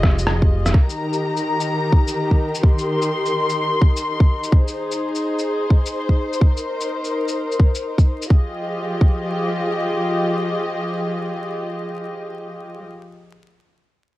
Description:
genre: future garage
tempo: 127 BPM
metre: 4/4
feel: swing 64% on 16ths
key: F minor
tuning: A4 = 439 Hz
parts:
  - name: dark studio string section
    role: sustained chords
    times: 0.0-12.8 s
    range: Eb3 to C6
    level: -22 LUFS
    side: left 1 dB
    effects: vintage 12-bit sampler grit, sidechain pumping
  - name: dark detuned saw bass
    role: bass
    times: 0.0-0.7 s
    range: F1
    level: -21 LUFS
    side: equal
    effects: sidechain pumping
  - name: electronic kick drum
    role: drums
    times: 0.0-9.2 s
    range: none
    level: -14 LUFS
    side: equal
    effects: none
  - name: electronic rim click and shaker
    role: drums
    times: 0.0-8.3 s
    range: none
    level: -26 LUFS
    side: left 1 dB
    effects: none
room: light reverb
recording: vinyl crackle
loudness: -17 LUFS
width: side -16 dB against mid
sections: 0.0-8.3 A section; 8.3-12.1 B section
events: none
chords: 0.0 Fm7; 0.7 Eb; 4.5 Ab; 8.3 Fm7

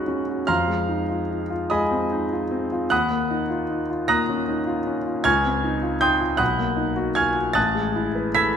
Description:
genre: classical, impressionist solo piano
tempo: 51 BPM (dotted quarters)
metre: 6/8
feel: rubato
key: unclear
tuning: A4 = 440 Hz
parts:
  - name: clear grand piano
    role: solo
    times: 0.0-8.6 s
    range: A1 to B6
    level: -20 LUFS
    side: equal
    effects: none
room: moderate concert hall reverb, RT60 1.9 s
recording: none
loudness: -20 LUFS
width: side -8 dB against mid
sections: 0.0-8.6 A section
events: none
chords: 0.5 Fm7; 2.9 Ebm9; 5.2 Dbmaj9; 6.4 Cbmaj9; 7.6 Asus2

